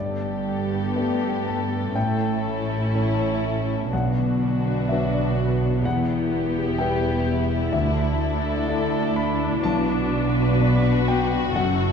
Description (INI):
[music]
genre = cinematic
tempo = 62 BPM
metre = 4/4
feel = rubato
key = B minor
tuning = A4 = 440 Hz
[part]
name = warm studio violin section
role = melody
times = 0.0-11.9 s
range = F#4 to B4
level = -33 LUFS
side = left 4 dB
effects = none
[part]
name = dark studio violin section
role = second line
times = 0.0-11.9 s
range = D4 to G4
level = -30 LUFS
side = left 4 dB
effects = none
[part]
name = warm concert grand piano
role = accompaniment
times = 0.0-11.9 s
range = B1 to B5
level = -26 LUFS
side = left 3 dB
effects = none
[part]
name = warm studio viola section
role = accompaniment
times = 0.0-11.9 s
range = B3 to E4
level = -30 LUFS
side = equal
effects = none
[part]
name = concert harp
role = arpeggios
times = 0.0-11.9 s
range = F#2 to B5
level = -31 LUFS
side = left 5 dB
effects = none
[part]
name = warm studio cello section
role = bass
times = 0.0-11.9 s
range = D2 to B2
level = -27 LUFS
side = right 3 dB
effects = none
[part]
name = warm studio double bass section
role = bass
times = 0.0-11.9 s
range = E1 to D2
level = -28 LUFS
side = right 5 dB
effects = none
[sound]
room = wet scoring stage reverb, RT60 1.6 s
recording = dark, warm production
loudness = -20 LUFS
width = side -6 dB against mid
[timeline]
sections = 0.0-11.9 A section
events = none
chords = 0.0 Gadd9; 2.0 A; 3.9 Bm; 5.9 Emadd9; 7.7 Dsus2; 9.6 Bm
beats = 0.95 1.96 2.94 | 3.92 4.90 5.85 6.80 | 7.74 8.69 9.65 10.61 | 11.56